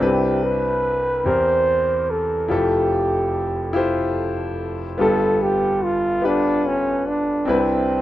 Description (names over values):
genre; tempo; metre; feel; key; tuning
gospel; 48 BPM (dotted quarters); 6/8; straight; C major; A4 = 440 Hz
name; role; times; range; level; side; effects
clear trombone; melody; 0.0-8.0 s; C4 to C5; -20 LUFS; right 1 dB; none
clear concert grand piano; accompaniment; 0.0-8.0 s; F1 to C5; -21 LUFS; left 1 dB; none
room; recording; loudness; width
light reverb, small room ambience; rough home demo mix; -18 LUFS; side -14 dB against mid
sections
0.0-8.0 A section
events
none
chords
0.0 Cmaj9; 1.3 C7/E; 2.5 Fmaj9; 5.0 G9; 7.5 Cmaj9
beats
| 0.02 1.26 | 2.51 3.75 | 5.00 6.24 | 7.48